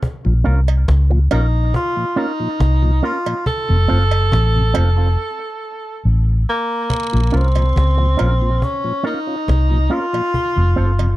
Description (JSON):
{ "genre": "roots reggae", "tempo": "70 BPM", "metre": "4/4", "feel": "straight", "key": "Bb harmonic minor", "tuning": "A4 = 441 Hz", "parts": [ { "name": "cajon", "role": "drums", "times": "0.0-11.1 s", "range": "none", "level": "-23 LUFS", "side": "equal", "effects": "none" }, { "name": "mellow tonewheel organ", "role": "accompaniment", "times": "0.2-11.1 s", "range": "F2 to F4", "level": "-25 LUFS", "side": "left 2 dB", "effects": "slow rotary speaker" }, { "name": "vintage muted fingered electric bass", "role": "bass", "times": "0.3-11.2 s", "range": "F1 to Db2", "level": "-14 LUFS", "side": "equal", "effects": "none" }, { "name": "electric guitar with an envelope filter", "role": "accompaniment", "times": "0.4-10.9 s", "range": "C4 to Bb4", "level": "-24 LUFS", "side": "right 4 dB", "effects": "tape echo" }, { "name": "cowbell and jawbone-type rattle", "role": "percussion", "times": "0.7-11.2 s", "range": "none", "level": "-27 LUFS", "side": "right 10 dB", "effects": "none" }, { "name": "warm tenor saxophone", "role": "melody", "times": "1.3-11.2 s", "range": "Bb3 to A4", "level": "-21 LUFS", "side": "equal", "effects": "tape echo" } ], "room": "little or no reverb", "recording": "dry, close 1970s-style studio recording", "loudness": "-14 LUFS", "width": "side -16 dB against mid", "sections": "0.0-6.9 A section; 6.9-11.2 B section", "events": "break 5.2-6.9", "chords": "0.0 Bbm; 3.5 F; 6.9 Bbm; 10.3 F" }